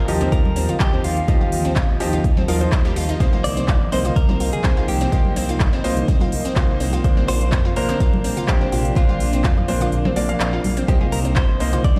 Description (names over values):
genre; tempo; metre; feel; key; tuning
progressive house; 125 BPM; 4/4; straight; C minor; A4 = 440 Hz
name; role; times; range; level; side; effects
direct-recorded clean electric guitar; melody; 0.0-12.0 s; F4 to D5; -30 LUFS; equal; spring reverb, sidechain pumping, digital delay
shimmering ambient pad; sustained chords; 0.3-12.0 s; C3 to F4; -32 LUFS; equal; none
clear concert grand piano; stabs; 0.0-12.0 s; F3 to F5; -28 LUFS; equal; sidechain pumping, delay
dark detuned saw bass; bass; 0.0-12.0 s; G1 to F2; -26 LUFS; equal; sidechain pumping
big-room dance drum kit; drums; 0.1-11.9 s; handclaps, hi-hat; -32 LUFS; equal; overdrive
analog pluck; arpeggios; 0.2-12.0 s; G3 to F4; -30 LUFS; equal; chorus, sidechain pumping, delay
congas and woodblock; percussion; 0.2-12.0 s; none; -31 LUFS; equal; sidechain pumping on perc
electronic kick drum; drums; 0.3-11.9 s; none; -20 LUFS; equal; overdrive
room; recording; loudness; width
light reverb, digital ambience; played on a big sound system in a bare room, large studio reverb; -19 LUFS; mono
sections
0.0-12.0 A section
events
kick drops out 9.9-10.9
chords
0.0 Ebadd9; 3.2 Cm7; 7.0 Bbadd9; 10.9 Cm7